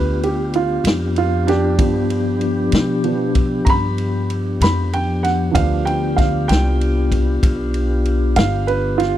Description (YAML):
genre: slow blues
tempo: 64 BPM (dotted quarters)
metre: 12/8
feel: straight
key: unclear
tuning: A4 = 440 Hz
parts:
  - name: dark upright piano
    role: accompaniment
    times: 0.0-9.2 s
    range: F3 to B5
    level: -20 LUFS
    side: right 5 dB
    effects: none
  - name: mellow tonewheel organ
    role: sustained chords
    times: 0.0-9.2 s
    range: F3 to G4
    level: -22 LUFS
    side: left 3 dB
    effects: slow rotary speaker
  - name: upright bass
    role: bass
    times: 0.0-9.2 s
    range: G1 to B2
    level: -20 LUFS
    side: equal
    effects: none
  - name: vintage drum kit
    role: drums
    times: 0.2-9.1 s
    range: kick drum, ride cymbal, snare drum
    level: -19 LUFS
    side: equal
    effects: none
room: small room ambience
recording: dry, close 1970s-style studio recording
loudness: -15 LUFS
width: side -12 dB against mid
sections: 0.0-9.2 A section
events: upright piano solo 0.0-9.2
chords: 0.0 G7